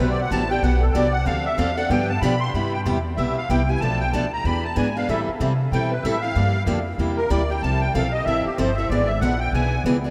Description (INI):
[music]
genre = acoustic string swing (jazz manouche)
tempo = 189 BPM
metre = 4/4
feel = swing 61% on 8ths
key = C major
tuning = A4 = 441 Hz
[part]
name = musette accordion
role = second line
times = 0.0-9.8 s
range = G4 to C6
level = -27 LUFS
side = equal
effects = none
[part]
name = picked steel-string acoustic guitar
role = accompaniment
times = 0.0-10.1 s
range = B2 to A4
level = -26 LUFS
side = equal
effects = none
[part]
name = upright bass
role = bass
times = 0.0-10.1 s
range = G1 to C3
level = -26 LUFS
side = equal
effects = none
[sound]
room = wet cathedral reverb, RT60 5.2 s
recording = in a vast, echoing space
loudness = -22 LUFS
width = mono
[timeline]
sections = 0.0-2.5 A section; 2.5-10.1 A section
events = accordion solo 0.0-10.1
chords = 0.0 Gmaj7; 1.3 Dm7; 1.9 G7; 2.5 Cmaj7; 3.8 Bm7b5; 4.4 E7; 5.1 Am9; 6.4 Gm7; 7.0 C7; 7.6 Fmaj7; 8.9 E7#11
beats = 0.31 0.63 0.95 | 1.27 1.59 1.90 2.22 | 2.54 2.86 3.18 3.49 | 3.81 4.13 4.45 4.76 | 5.08 5.40 5.72 6.04 | 6.35 6.67 6.99 7.31 | 7.62 7.94 8.26 8.58 | 8.89 9.21 9.53 9.85